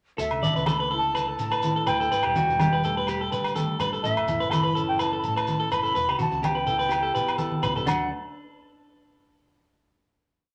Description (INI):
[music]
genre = highlife guitar band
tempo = 125 BPM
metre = 4/4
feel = swing 53% on 16ths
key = D major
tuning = A4 = 441 Hz
[part]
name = wooden flute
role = melody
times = 0.2-8.1 s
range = E5 to B5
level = -29 LUFS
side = equal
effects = none
[part]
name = fingerpicked steel-string acoustic guitar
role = accompaniment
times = 0.2-8.1 s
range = G2 to A4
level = -36 LUFS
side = equal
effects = none
[part]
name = clean electric guitar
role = arpeggios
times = 0.2-8.1 s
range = D4 to D5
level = -31 LUFS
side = equal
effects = spring reverb
[part]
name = fingered electric bass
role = bass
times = 0.2-8.1 s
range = E1 to E2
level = -38 LUFS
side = equal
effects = none
[part]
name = congas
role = percussion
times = 0.2-8.1 s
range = none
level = -32 LUFS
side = equal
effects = none
[part]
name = shekere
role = percussion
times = 0.2-8.1 s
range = none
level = -42 LUFS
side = equal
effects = none
[part]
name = agogo bells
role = percussion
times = 0.3-8.0 s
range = none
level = -34 LUFS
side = equal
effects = none
[sound]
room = wet club reverb, RT60 0.6 s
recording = none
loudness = -25 LUFS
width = mono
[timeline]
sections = 0.2-7.9 A section; 7.9-9.8 final chord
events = drum fill 7.5-7.9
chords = 0.2 Dsus2; 2.1 Gadd9; 4.0 A; 6.0 Em; 7.9 D